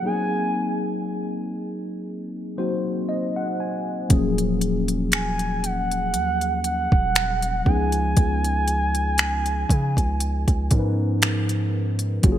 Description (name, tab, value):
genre	contemporary R&B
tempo	59 BPM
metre	4/4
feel	swing 54% on 16ths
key	unclear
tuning	A4 = 440 Hz
part	gliding portamento lead	melody	0.0-11.7 s	Gb5 to Ab5	-26 LUFS	right 2 dB	chorus, digital delay
part	mellow tine electric piano	accompaniment	0.0-12.4 s	F3 to Ab5	-26 LUFS	left 2 dB	analog chorus
part	long sustained 808-style bass	bass	4.1-12.4 s	Eb1 to Db3	-25 LUFS	equal	none
part	smooth R&B drum kit	drums	4.1-12.4 s	finger snaps, hi-hat, kick drum	-20 LUFS	equal	overdrive
room	light reverb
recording	bright 1980s-style digital production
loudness	-20 LUFS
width	side -11 dB against mid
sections	0.0-12.4 A section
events	tine electric piano fill 2.1-4.1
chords	0.0 Ab7; 4.1 Ebm11; 7.7 Db7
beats	| 0.04 1.05 2.07 3.08 | 4.10 5.12 6.14 7.15 | 8.17 9.19 10.20 11.22 | 12.24